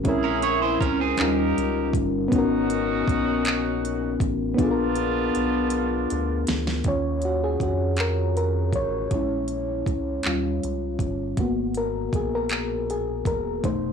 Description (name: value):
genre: slow six-eight R&B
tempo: 53 BPM (dotted quarters)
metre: 6/8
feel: straight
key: unclear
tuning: A4 = 439 Hz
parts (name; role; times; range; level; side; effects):
- mellow FM electric piano; accompaniment; 0.0-13.9 s; B2 to Db5; -24 LUFS; left 3 dB; chorus
- smooth R&B drum kit; drums; 0.0-13.8 s; handclaps, hi-hat, kick drum, snare drum; -27 LUFS; right 1 dB; none
- clear horn section; stabs; 0.1-6.4 s; Cb4 to Bb4; -29 LUFS; right 6 dB; slapback echo
- rubbery square bass; bass; 0.1-13.9 s; Fb1 to F2; -30 LUFS; right 1 dB; tube saturation
- electric guitar at the edge of break-up; second line; 0.2-1.4 s; C4 to Db5; -24 LUFS; right 7 dB; none
room: light reverb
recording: blown-out, overdriven recording, overdrive, studio ambience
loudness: -22 LUFS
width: side -6 dB against mid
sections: 0.0-6.8 A section; 6.8-13.9 B section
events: drum fill 4.6-6.8; FM electric piano solo 6.8-13.9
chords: 0.1 Bbm7b5; 1.2 Eb7; 2.3 Abm11; 4.6 Bb7b9; 6.8 Gbmaj13; 9.1 Bbm7b5; 10.2 Eb7; 11.4 Abm9